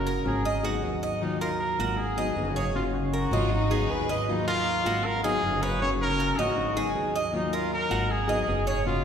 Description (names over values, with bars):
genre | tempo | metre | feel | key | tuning
latin | 157 BPM | 4/4 | straight | unclear | A4 = 438 Hz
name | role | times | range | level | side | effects
warm trumpet | melody | 0.0-9.0 s | Eb4 to Db5 | -30 LUFS | equal | none
nylon-string guitar | accompaniment | 0.0-9.0 s | Db3 to Ab4 | -30 LUFS | left 3 dB | none
upright bass | bass | 0.0-9.0 s | Gb1 to Eb2 | -31 LUFS | right 1 dB | none
Cuban tres | arpeggios | 0.1-8.9 s | Gb4 to Eb5 | -31 LUFS | right 2 dB | none
clear studio violin section | second line | 3.3-4.2 s | Eb4 to Cb5 | -34 LUFS | equal | none
room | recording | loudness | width
wet church reverb, RT60 3.4 s | recorded in a church or concert hall | -24 LUFS | side -8 dB against mid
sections
0.0-1.2 A section; 1.2-9.0 B section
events
trumpet solo 0.0-1.2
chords
0.5 Abm7; 1.2 Ebmadd9; 2.0 Abm7; 2.7 Gbmaj7; 3.5 Abm7; 4.3 Ebmadd9; 5.0 Abm7; 5.8 Gbmaj7; 6.6 Abm7; 7.3 Ebmadd9; 8.1 Abm7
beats
0.07 0.45 0.83 | 1.22 1.60 1.98 2.37 | 2.75 3.13 3.51 3.90 | 4.28 4.66 5.04 5.43 | 5.81 6.19 6.57 6.96 | 7.34 7.72 8.10 8.48 | 8.87